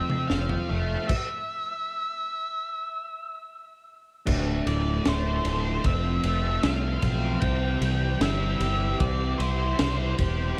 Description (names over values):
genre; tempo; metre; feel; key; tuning
psychedelic rock; 76 BPM; 4/4; straight; unclear; A4 = 435 Hz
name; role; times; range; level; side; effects
octave-fuzz lead guitar; melody; 0.0-10.1 s; C5 to G5; -34 LUFS; equal; distortion, tape echo
soft string machine; sustained chords; 0.0-10.6 s; E3 to A4; -39 LUFS; equal; none
overdriven electric guitar; riff; 0.0-10.6 s; D2 to C5; -33 LUFS; equal; rotary speaker, tape echo
crunchy breakbeat drum kit; drums; 0.1-10.4 s; crash cymbal, kick drum, ride cymbal, snare drum, toms; -32 LUFS; equal; none
picked electric bass; bass; 0.3-10.5 s; D1 to C2; -30 LUFS; equal; none
room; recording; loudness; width
light reverb; echo-heavy mix; -27 LUFS; mono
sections
0.0-4.3 A section; 4.3-10.6 B section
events
stop 1.1-4.3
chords
0.0 F; 1.1 N.C.; 4.3 Dm7; 5.8 F; 7.4 C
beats
0.30 | 1.09 1.89 2.68 3.47 | 4.27 5.06 5.85 6.64 | 7.43 8.22 9.01 9.80 | 10.59